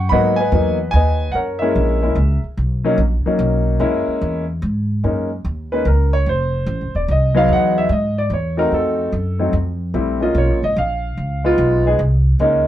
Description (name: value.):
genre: jazz piano trio.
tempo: 146 BPM.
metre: 3/4.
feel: swing 66% on 8ths.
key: F# major from 5.0 s.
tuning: A4 = 441 Hz.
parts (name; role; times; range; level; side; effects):
warm grand piano; melody; 0.0-12.7 s; F#3 to C#6; -17 LUFS; left 1 dB; none.
upright bass; bass; 0.0-12.7 s; Eb1 to G#2; -18 LUFS; equal; none.
room: light reverb.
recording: band playing live in one room.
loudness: -15 LUFS.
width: side -12 dB against mid.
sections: 0.0-5.0 A section; 5.0-12.7 B section.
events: grand piano solo 5.0-12.7.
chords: 0.1 G#m7; 1.3 F#9; 2.6 Bmaj9; 3.8 F#9; 5.0 F#6; 6.3 F7; 7.5 Emaj9; 8.7 F7b9; 9.9 A#m7; 11.2 C#7.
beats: | 0.12 0.53 0.94 | 1.35 1.76 2.17 | 2.58 2.98 3.40 | 3.81 4.21 4.62 | 5.04 5.45 5.86 | 6.26 6.67 7.08 | 7.49 7.90 8.31 | 8.72 9.13 9.54 | 9.95 10.36 10.77 | 11.18 11.59 11.99 | 12.40.